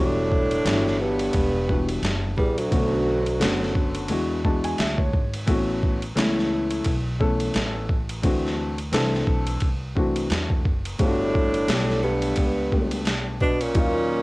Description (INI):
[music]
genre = hip hop, jazz-hop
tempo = 87 BPM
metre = 4/4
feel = swing 57% on 16ths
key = E dorian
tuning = A4 = 440 Hz
[part]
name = mellow bassoon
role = melody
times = 0.0-4.0, 11.0-14.2 s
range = D2 to B2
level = -26 LUFS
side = equal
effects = cassette tape, tape echo
[part]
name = mellow tenor saxophone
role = second line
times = 0.0-4.0, 11.0-14.2 s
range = F#3 to D4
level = -29 LUFS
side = right 2 dB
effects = cassette tape
[part]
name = dark grand piano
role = accompaniment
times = 0.0-14.2 s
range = D3 to A5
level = -26 LUFS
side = left 1 dB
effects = cassette tape
[part]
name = upright bass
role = bass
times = 0.0-14.2 s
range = E1 to E2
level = -29 LUFS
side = equal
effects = none
[part]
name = boom bap sampler-style drum kit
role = drums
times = 0.3-13.9 s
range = hi-hat, kick drum, ride cymbal, snare drum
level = -25 LUFS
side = equal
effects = cassette tape
[sound]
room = light reverb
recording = home recording on cassette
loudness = -21 LUFS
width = side -22 dB against mid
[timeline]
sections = 0.0-14.2 A section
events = grand piano fill 4.1-5.5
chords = 0.0 Em7; 2.7 Bm7; 4.1 E7; 5.5 A69; 8.2 D7; 11.0 Gmaj9